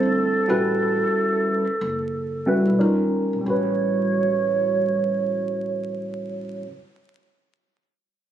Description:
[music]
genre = hip hop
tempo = 91 BPM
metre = 4/4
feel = swing 59% on 16ths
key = unclear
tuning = A4 = 440 Hz
[part]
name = mellow shakuhachi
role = melody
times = 0.0-6.7 s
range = A4 to C#5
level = -24 LUFS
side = right 4 dB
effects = low-pass filter, plate reverb
[part]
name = tine electric piano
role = accompaniment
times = 0.0-6.7 s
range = G3 to C5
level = -22 LUFS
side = equal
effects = phaser, low-pass filter, plate reverb
[part]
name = upright bass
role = bass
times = 0.0-6.7 s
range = F#1 to D#2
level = -35 LUFS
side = equal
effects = none
[sound]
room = moderate studio reverb, RT60 0.5 s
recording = recorded on a phone in the room, studio reverb, vinyl crackle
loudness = -20 LUFS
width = side -10 dB against mid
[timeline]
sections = 0.0-3.5 A section; 3.5-6.1 B section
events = filter sweep 0.0-3.5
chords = 0.5 A13; 2.8 D#9; 3.5 A13

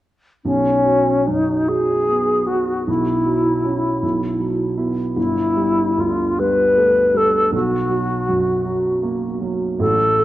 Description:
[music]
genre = classical, impressionist duo for alto flute and grand piano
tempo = 47-54 BPM (dotted quarters)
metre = 6/8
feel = rubato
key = unclear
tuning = A4 = 439 Hz
[part]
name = warm baby grand piano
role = accompaniment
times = 0.4-10.2 s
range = G1 to E4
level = -21 LUFS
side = right 2 dB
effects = none
[part]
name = wooden-headed alto flute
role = melody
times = 0.5-10.2 s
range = C#4 to B4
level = -17 LUFS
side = left 1 dB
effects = none
[sound]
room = wet scoring stage reverb, RT60 1.5 s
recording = worn, warbling old tape, cassette tape, warbly pitch drift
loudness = -16 LUFS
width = side -14 dB against mid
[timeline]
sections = 0.4-10.2 A section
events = none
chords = 0.4 Bsus2; 2.9 F#7sus4/B; 4.0 Esus2/B; 5.2 Gadd9; 7.5 B5

